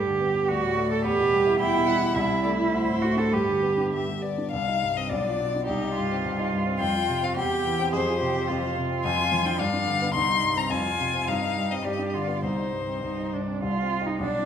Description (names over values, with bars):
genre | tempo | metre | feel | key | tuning
quick classical-period movement for piano trio | 105 BPM | 2/4 | rubato | G major, C minor from 4.5 s | A4 = 442 Hz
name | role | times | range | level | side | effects
rich cello | second line | 0.0-14.5 s | D4 to A4 | -26 LUFS | right 4 dB | none
warm grand piano | accompaniment | 0.0-14.5 s | B1 to A4 | -28 LUFS | left 1 dB | none
rich violin | melody | 0.5-14.5 s | G4 to C6 | -28 LUFS | left 7 dB | none
room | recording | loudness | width
wet recital hall reverb, RT60 1.5 s | none | -23 LUFS | side -8 dB against mid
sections
0.0-4.5 A section; 4.5-13.6 B section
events
none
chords
0.5 D; 1.0 Em; 2.2 Am/C; 2.7 D5; 3.3 G; 4.5 Cm; 5.1 Bdim; 5.7 Cm; 6.8 F5; 7.4 C/E; 7.9 F5; 9.0 Ddim/F; 9.6 G7; 10.1 Cm; 10.7 Fm; 11.3 Cm/G; 11.8 G; 12.4 Cm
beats
0.48 | 1.04 1.60 | 2.16 2.73 | 3.32 3.92 | 4.52 5.09 | 5.66 6.23 | 6.79 7.36 | 7.92 8.49 | 9.04 9.59 | 10.15 10.71 | 11.28 11.85 | 12.44 13.03 | 13.62 14.21